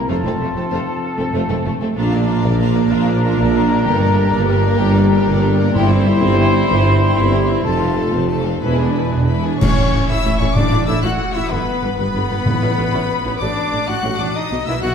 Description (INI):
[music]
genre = cinematic, heroic adventure film score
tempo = 126 BPM (dotted quarters)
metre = 12/8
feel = straight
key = C mixolydian, A mixolydian from 9.6 s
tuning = A4 = 441 Hz
[part]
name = silver concert flute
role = second line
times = 0.0-14.9 s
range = B4 to C6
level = -27 LUFS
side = left 2 dB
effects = none
[part]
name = warm clarinet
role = second line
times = 0.0-9.4 s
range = D4 to F4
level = -27 LUFS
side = left 4 dB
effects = none
[part]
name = dark French horn section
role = sustained chords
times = 0.0-14.9 s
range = F3 to F#4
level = -26 LUFS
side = left 3 dB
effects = none
[part]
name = warm trumpet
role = stabs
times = 0.0-14.9 s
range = B3 to C5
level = -25 LUFS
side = equal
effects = none
[part]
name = warm symphonic violin section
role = melody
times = 0.1-14.9 s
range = F4 to F#6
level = -27 LUFS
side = left 5 dB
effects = none
[part]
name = rich studio violin section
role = second line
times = 0.1-14.9 s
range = A3 to F#5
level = -27 LUFS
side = left 4 dB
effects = none
[part]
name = rich symphonic viola section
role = accompaniment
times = 0.1-14.9 s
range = D3 to A4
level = -25 LUFS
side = right 2 dB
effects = none
[part]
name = dark tuba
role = bass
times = 0.1-14.9 s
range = E1 to B1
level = -22 LUFS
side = right 1 dB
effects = none
[part]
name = rich studio double bass section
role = bass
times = 0.1-14.9 s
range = E1 to B1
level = -22 LUFS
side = right 1 dB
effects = none
[part]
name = rich symphonic cello section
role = bass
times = 0.1-14.9 s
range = E2 to B2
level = -22 LUFS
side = right 2 dB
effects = none
[part]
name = timpani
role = percussion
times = 5.8-6.2, 9.6-12.9 s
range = G2 to A2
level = -21 LUFS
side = equal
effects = none
[part]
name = clash cymbals and concert bass drum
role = percussion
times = 9.6-10.2 s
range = none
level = -23 LUFS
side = left 1 dB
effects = none
[sound]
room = wet scoring stage reverb, RT60 1.6 s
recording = heard from further back in the room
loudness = -14 LUFS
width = side -7 dB against mid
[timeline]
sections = 0.0-9.6 A section; 9.6-14.9 B section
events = band accent 9.6-9.9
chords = 0.1 F; 2.0 Bb; 3.9 Gm; 5.8 C/G; 7.7 F; 8.6 E7; 9.6 A; 10.6 Dadd9/A; 11.5 G; 12.5 A; 13.4 D; 14.4 B